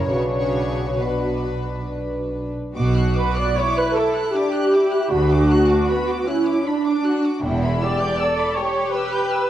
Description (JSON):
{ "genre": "classical, slow romantic movement for string orchestra", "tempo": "64-81 BPM", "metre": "3/4", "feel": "rubato", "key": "B minor", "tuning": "A4 = 440 Hz", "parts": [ { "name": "warm symphonic violin section", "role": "melody", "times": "0.0-9.5 s", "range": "B4 to G6", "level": "-30 LUFS", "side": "left 3 dB", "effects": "none" }, { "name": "warm symphonic violin section", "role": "second line", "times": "0.0-9.5 s", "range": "B3 to B4", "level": "-25 LUFS", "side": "left 1 dB", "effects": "none" }, { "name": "dark symphonic viola section", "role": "accompaniment", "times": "0.0-9.5 s", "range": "D4 to D5", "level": "-21 LUFS", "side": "right 1 dB", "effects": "none" }, { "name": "dark symphonic double bass section", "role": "bass", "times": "0.0-8.1 s", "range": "E1 to D2", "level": "-25 LUFS", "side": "right 2 dB", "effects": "none" }, { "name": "rich symphonic cello section", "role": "bass", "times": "0.0-8.1 s", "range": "D2 to C#3", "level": "-26 LUFS", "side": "right 1 dB", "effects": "none" } ], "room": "moderate scoring stage reverb, RT60 1.6 s", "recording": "worn, warbling old tape, cassette tape, warbly pitch drift", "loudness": "-18 LUFS", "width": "side -12 dB against mid", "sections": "0.0-2.8 A section; 2.8-9.5 B section", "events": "none", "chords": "0.1 Bm; 5.1 Bm/D; 7.4 Em", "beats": "| 0.09 1.00 1.89 | 2.76 3.57 4.34 | 5.11 5.89 6.66 | 7.43 8.19 8.93" }